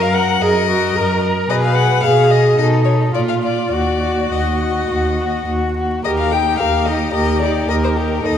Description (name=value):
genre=quick classical-period movement for string quartet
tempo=102-112 BPM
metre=4/4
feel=rubato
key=Eb minor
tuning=A4 = 441 Hz
part: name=rich violin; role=melody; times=0.0-8.4 s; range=Bb4 to G5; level=-20 LUFS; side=left 7 dB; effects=none
part: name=warm violin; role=second line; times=0.0-8.4 s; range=F4 to Bb4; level=-21 LUFS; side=left 2 dB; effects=none
part: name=warm viola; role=accompaniment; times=0.0-8.4 s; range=D#4 to Cb5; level=-20 LUFS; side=right 1 dB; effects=none
part: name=rich cello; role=bass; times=0.0-8.4 s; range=Eb2 to B2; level=-19 LUFS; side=right 1 dB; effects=none
room=wet scoring stage reverb, RT60 1.7 s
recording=recorded in a church or concert hall, vinyl crackle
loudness=-14 LUFS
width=side -9 dB against mid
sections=0.0-6.1 A section; 6.1-8.4 B section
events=none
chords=0.0 Ebm/Gb; 1.5 Abm/Cb; 2.6 B7; 3.1 Bb; 3.7 Ebm; 6.1 Eb